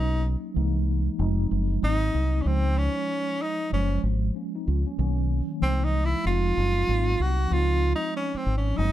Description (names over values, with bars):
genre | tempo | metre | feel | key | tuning
hip hop | 95 BPM | 4/4 | swing 62% on 16ths | Db major | A4 = 445 Hz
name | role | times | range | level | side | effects
breathy tenor saxophone | melody | 0.0-8.9 s | C4 to Gb4 | -27 LUFS | right 1 dB | plate reverb
mellow tine electric piano | accompaniment | 0.0-8.9 s | Eb3 to C5 | -30 LUFS | equal | medium stereo tremolo
deep dub fingered electric bass | bass | 0.0-8.9 s | F1 to Db2 | -24 LUFS | equal | none
room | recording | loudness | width
light reverb | dark, warm production | -23 LUFS | side -13 dB against mid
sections
0.0-8.9 A section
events
tenor saxophone solo 0.0-8.9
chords
0.0 Cbmaj7; 0.6 C7alt; 1.2 Fm7; 1.8 Ab9; 2.5 Dbmaj9; 3.7 Gbmaj9#11; 5.0 Cbmaj7; 5.6 C7alt; 6.3 Fm7; 6.9 Ab9; 7.5 Dbmaj9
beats
0.57 1.20 1.83 | 2.46 3.09 3.73 4.36 | 4.99 5.62 6.25 6.88 | 7.51 8.15 8.78